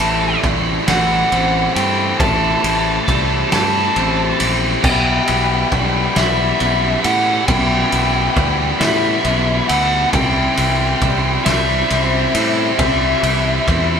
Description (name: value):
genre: post-rock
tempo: 45 BPM (dotted quarters)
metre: 6/8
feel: straight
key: E minor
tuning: A4 = 440 Hz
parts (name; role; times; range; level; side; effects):
- overdriven slide guitar; melody; 0.0-14.0 s; E5 to A5; -20 LUFS; right 1 dB; none
- rich chamber string section; sustained chords; 0.0-14.0 s; C4 to C6; -30 LUFS; right 1 dB; none
- electric guitar through a small old amp; arpeggios; 0.0-14.0 s; A2 to G4; -27 LUFS; left 4 dB; none
- vibraphone with hard mallets; arpeggios; 0.0-14.0 s; B4 to E5; -29 LUFS; left 4 dB; none
- distorted electric guitar; riff; 0.0-14.0 s; A2 to E4; -22 LUFS; left 6 dB; distortion
- distorted electric guitar; riff; 0.0-14.0 s; A2 to E4; -22 LUFS; right 7 dB; overdrive
- growling fingered electric bass; bass; 0.0-14.0 s; A1 to A2; -21 LUFS; equal; overdrive
- loose indie drum kit; drums; 0.0-13.9 s; crash cymbal, kick drum, ride cymbal, snare drum; -20 LUFS; equal; none
room: moderate studio reverb, RT60 0.9 s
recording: band playing live in one room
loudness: -13 LUFS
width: side -7 dB against mid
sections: 0.0-14.0 A section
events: none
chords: 0.0 Am7; 4.8 Em/B; 10.1 C